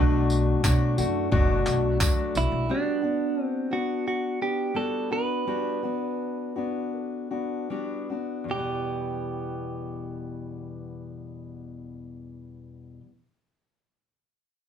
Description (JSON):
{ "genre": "acoustic pop", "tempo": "75-88 BPM", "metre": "4/4", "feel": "straight", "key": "E minor", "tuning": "A4 = 441 Hz", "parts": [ { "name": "direct-recorded clean electric guitar", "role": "melody", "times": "0.0-13.0 s", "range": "D4 to B4", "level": "-30 LUFS", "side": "right 5 dB", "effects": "none" }, { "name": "fingerpicked steel-string acoustic guitar", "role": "accompaniment", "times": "0.0-13.1 s", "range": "E2 to F#4", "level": "-29 LUFS", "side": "left 4 dB", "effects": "none" }, { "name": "upright bass", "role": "bass", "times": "0.0-2.7 s", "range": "F#1 to B2", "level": "-26 LUFS", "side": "equal", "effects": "none" }, { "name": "dusty soul sampler-style drum kit", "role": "drums", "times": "0.3-2.5 s", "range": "handclaps, kick drum, tambourine", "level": "-25 LUFS", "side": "equal", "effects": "none" }, { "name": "tambourine", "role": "percussion", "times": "0.6-2.2 s", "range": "none", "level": "-32 LUFS", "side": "right 7 dB", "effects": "none" } ], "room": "wet small room ambience, RT60 0.5 s", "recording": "heard from further back in the room", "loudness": "-25 LUFS", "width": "side -8 dB against mid", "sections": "0.0-2.7 A section; 2.7-8.5 B section; 8.5-11.7 C section", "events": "slowing down 2.7-8.5", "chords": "0.0 Bm7; 2.7 Gmaj7; 8.5 Em" }